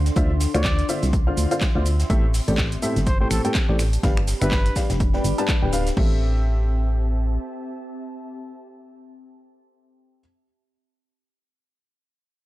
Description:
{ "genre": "piano house", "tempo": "124 BPM", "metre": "4/4", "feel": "swing 58% on 16ths", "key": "A minor", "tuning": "A4 = 440 Hz", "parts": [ { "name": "solid FM bass", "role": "bass", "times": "0.0-7.4 s", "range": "D1 to D2", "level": "-21 LUFS", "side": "equal", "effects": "sidechain pumping" }, { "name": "warbly tape-like pad", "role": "texture", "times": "0.0-10.4 s", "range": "C4 to C6", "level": "-33 LUFS", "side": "left 1 dB", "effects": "chorus, built-in reverb, sidechain pumping" }, { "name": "crisp fusion drum kit", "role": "drums", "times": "0.1-6.0 s", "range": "hi-hat, snare drum", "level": "-40 LUFS", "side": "left 2 dB", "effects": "high-pass filter on hats, small room ambience, high-pass filter on snare, high-pass filter on room" }, { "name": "garage drum kit", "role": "drums", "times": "0.1-6.1 s", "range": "crash cymbal, finger snaps, handclaps, hi-hat, shaker", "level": "-30 LUFS", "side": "right 1 dB", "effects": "overdrive, small room ambience" }, { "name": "warm upright piano", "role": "riff", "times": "0.2-10.2 s", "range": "A2 to A5", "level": "-26 LUFS", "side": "left 1 dB", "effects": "sidechain pumping, analog delay" }, { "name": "electronic kick drum", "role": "drums", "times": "0.2-6.1 s", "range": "none", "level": "-22 LUFS", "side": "equal", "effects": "overdrive, small room ambience" }, { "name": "warm trumpet", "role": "melody", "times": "0.5-4.8 s", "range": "A4 to D5", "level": "-32 LUFS", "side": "equal", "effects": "analog delay" } ], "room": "studio reverb", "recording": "dry, gritty hardware recording", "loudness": "-19 LUFS", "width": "side -16 dB against mid", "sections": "0.0-6.0 A section; 6.0-9.8 B section", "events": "drop 0.0-6.0", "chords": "0.0 Dm9; 2.1 Am7; 4.0 G7; 6.0 Am7", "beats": "| 0.16 0.65 1.13 1.61 | 2.10 2.58 3.07 3.55 | 4.03 4.52 5.00 5.49 | 5.97 6.45 6.94 7.42 | 7.91 8.39 8.87 9.36" }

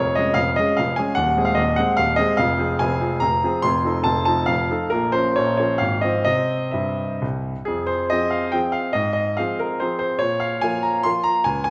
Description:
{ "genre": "classical, romantic triple-time dance for piano with dotted rhythms", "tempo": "119-153 BPM", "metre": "3/4", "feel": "rubato", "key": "F minor", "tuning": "A4 = 439 Hz", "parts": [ { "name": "clear grand piano", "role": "solo", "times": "0.0-11.7 s", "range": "Eb1 to C6", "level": "-21 LUFS", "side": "equal", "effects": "none" } ], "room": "wet scoring stage reverb, RT60 1.8 s", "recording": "recorded in a church or concert hall", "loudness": "-21 LUFS", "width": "mono", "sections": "0.0-7.7 A section; 7.7-11.7 B section", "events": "none", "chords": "0.0 Db/F; 1.2 Ab/Eb; 2.4 Fm; 3.7 F7; 4.9 Bbm; 5.8 Fm/Ab; 6.3 C; 7.7 Fm; 9.0 Fm/Ab; 10.2 Bb5", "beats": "0.37 0.78 | 1.19 1.60 2.02 | 2.42 2.83 3.25 | 3.65 4.08 4.51 | 4.93 5.37 5.82 | 6.27 6.75 7.23 | 7.68 8.12 8.55 | 8.96 9.38 9.82 | 10.23 10.65 11.07 | 11.47" }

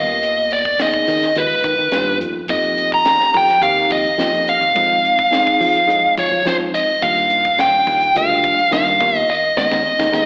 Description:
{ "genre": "electric jazz fusion", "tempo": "106 BPM", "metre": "4/4", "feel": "straight", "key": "unclear", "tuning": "A4 = 440 Hz", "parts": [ { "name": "biting lead guitar", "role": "melody", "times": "0.0-10.3 s", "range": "Cb5 to Bb5", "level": "-17 LUFS", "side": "equal", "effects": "overdrive, slapback echo" }, { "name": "tine electric piano", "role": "accompaniment", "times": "0.0-10.2 s", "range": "G3 to Ab4", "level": "-27 LUFS", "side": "equal", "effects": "phaser" }, { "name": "fingered electric bass", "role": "bass", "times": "0.0-10.2 s", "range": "D2 to F3", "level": "-29 LUFS", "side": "equal", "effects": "none" }, { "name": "tight funk drum kit", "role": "drums", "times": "0.1-10.3 s", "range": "hi-hat, kick drum, snare drum", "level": "-30 LUFS", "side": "equal", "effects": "slapback echo" } ], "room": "small room ambience", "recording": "live gig heard through the venue's PA, recital hall reverb, AM radio sound", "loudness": "-16 LUFS", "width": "mono", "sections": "0.0-10.3 A section", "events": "band accent 9.3-10.3", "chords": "0.0 Abm6/Eb; 2.5 F9sus4; 4.8 Fm7; 7.0 Ebmaj9; 9.0 Abm6/Eb", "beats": "| 0.22 0.79 1.35 1.92 | 2.49 3.06 3.62 4.19 | 4.76 5.32 5.89 6.46 | 7.02 7.59 8.16 8.72 | 9.29 9.85" }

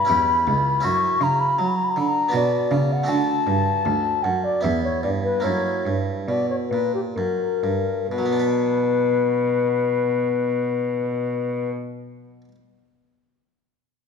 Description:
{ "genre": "classical, baroque-style sonata movement with continuo", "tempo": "63-81 BPM", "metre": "3/4", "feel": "straight", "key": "B minor", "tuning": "A4 = 437 Hz", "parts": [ { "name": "mellow baroque flute", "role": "melody", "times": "0.0-11.7 s", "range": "G4 to C#6", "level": "-22 LUFS", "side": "left 5 dB", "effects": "none" }, { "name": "harpsichord", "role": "accompaniment", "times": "0.0-12.6 s", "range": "C#2 to B4", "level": "-27 LUFS", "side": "right 4 dB", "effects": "none" }, { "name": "rich cello", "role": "bass", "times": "0.0-11.7 s", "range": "C#2 to F#3", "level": "-25 LUFS", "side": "right 3 dB", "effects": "none" } ], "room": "wet recital hall reverb, RT60 1.7 s", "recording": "minimal, uncompressed stereo recording", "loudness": "-19 LUFS", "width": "side -6 dB against mid", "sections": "0.0-8.1 A section; 8.1-10.9 B section", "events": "slowing down 2.0-8.1", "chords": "0.1 C#dim/E; 0.8 F#5; 2.3 Bm; 3.1 D; 4.6 Em; 5.4 F#7; 8.1 Bm", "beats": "0.10 | 0.85 1.59 2.34 | 3.09 3.85 4.64 | 5.45 6.28 7.17 | 8.10 9.04 9.99" }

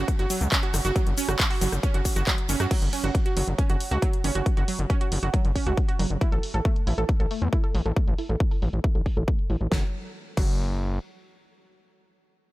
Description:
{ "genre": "uplifting trance", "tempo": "137 BPM", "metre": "4/4", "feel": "straight", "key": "F# minor", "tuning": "A4 = 445 Hz", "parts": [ { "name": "analog pluck", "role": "arpeggios", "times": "0.0-10.5 s", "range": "F#3 to A4", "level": "-31 LUFS", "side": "right 4 dB", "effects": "chorus, sidechain pumping, digital delay" }, { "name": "gritty driven synth bass", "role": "bass", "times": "0.0-11.0 s", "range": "F#1 to F#2", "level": "-26 LUFS", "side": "equal", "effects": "sidechain pumping" }, { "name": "big-room dance drum kit", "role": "drums", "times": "0.1-10.5 s", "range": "crash cymbal, handclaps, hi-hat, rim click, shaker, snare drum", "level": "-30 LUFS", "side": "equal", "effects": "low-pass filter on snare, low-pass filter on hats, low-pass filter on perc, low-pass filter on cymbals" }, { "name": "electronic kick drum", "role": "drums", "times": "0.1-10.5 s", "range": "none", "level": "-24 LUFS", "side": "equal", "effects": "none" } ], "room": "little or no reverb", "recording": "none", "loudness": "-22 LUFS", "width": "side -18 dB against mid", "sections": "0.0-2.7 A section; 2.7-9.7 B section; 9.7-12.5 C section", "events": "drop 0.0-2.7; filter sweep on analog synth bass 2.7-9.7; filter sweep on synth pluck 2.7-9.7", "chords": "0.0 F#5; 6.2 A5; 9.7 N.C.", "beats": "0.08 0.52 | 0.96 1.40 1.83 2.27 | 2.71 3.15 3.58 4.02 | 4.46 4.90 5.34 5.78 | 6.21 6.65 7.09 7.53 | 7.96 8.40 8.84 9.28 | 9.72 10.15 10.59" }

